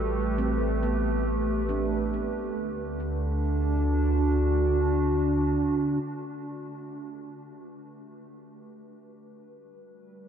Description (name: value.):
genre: ambient.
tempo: 69 BPM.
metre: 4/4.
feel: straight.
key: A dorian.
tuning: A4 = 436 Hz.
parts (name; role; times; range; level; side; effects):
warbly tape-like pad; sustained chords; 0.0-10.3 s; D3 to B4; -28 LUFS; right 1 dB; chorus, built-in reverb.
handpan; arpeggios; 0.0-3.6 s; G3 to B4; -37 LUFS; equal; ping-pong delay.
round analog bass; bass; 0.0-6.0 s; A1 to D2; -28 LUFS; right 1 dB; none.
room: wet huge ambient reverb, RT60 7.8 s.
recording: dreamy mix soaked in reverb.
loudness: -24 LUFS.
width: side -8 dB against mid.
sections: 0.0-6.0 A section; 6.0-10.3 B section.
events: fade-out on handpan 0.0-6.0.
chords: 0.0 Am9; 2.6 D; 6.0 Asus2; 9.5 Gmaj7.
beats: 0.82 1.69 | 2.56 3.43 4.30 5.17 | 6.04 6.90 7.77 8.64 | 9.51.